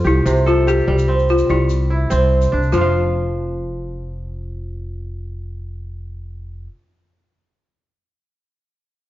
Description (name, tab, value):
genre	west african traditional, West African string and xylophone music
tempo	97 BPM (dotted quarters)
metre	12/8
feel	straight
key	unclear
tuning	A4 = 440 Hz
part	kora	arpeggios	0.0-6.7 s	C3 to F5	-20 LUFS	right 2 dB	none
part	upright bass	bass	0.0-6.7 s	F1 to C2	-20 LUFS	equal	none
part	balafon	melody	0.1-6.7 s	E4 to G4	-21 LUFS	left 3 dB	none
part	egg shaker	percussion	0.1-2.9 s	none	-41 LUFS	left 8 dB	none
room	light reverb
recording	worn, warbling old tape, cassette tape, warbly pitch drift, nothing above 7.5 kHz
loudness	-14 LUFS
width	side -15 dB against mid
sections	0.0-2.7 A section; 2.7-5.2 B section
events	none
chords	0.3 C; 2.7 Dm/F